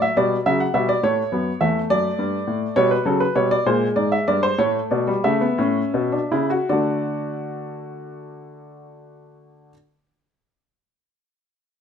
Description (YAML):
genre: classical, baroque-style 3-part fugue for grand piano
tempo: 51-70 BPM (dotted quarters)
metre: 6/8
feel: straight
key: D major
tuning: A4 = 441 Hz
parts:
  - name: warm baby grand piano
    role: solo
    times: 0.0-9.7 s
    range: E2 to F#5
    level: -19 LUFS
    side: equal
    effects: none
room: moderate stone room reverb, RT60 1.0 s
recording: none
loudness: -18 LUFS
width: side -7 dB against mid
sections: 0.0-6.7 A section; 6.7-11.3 B section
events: slowing down 1.9-6.7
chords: 0.2 G/B; 1.0 A; 1.9 D/F#; 2.8 G/B; 3.6 Bb7; 4.6 A; 6.7 D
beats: 0.17 | 1.04 1.90 | 2.76 3.65 | 4.59 5.59 | 6.70 7.86 | 9.02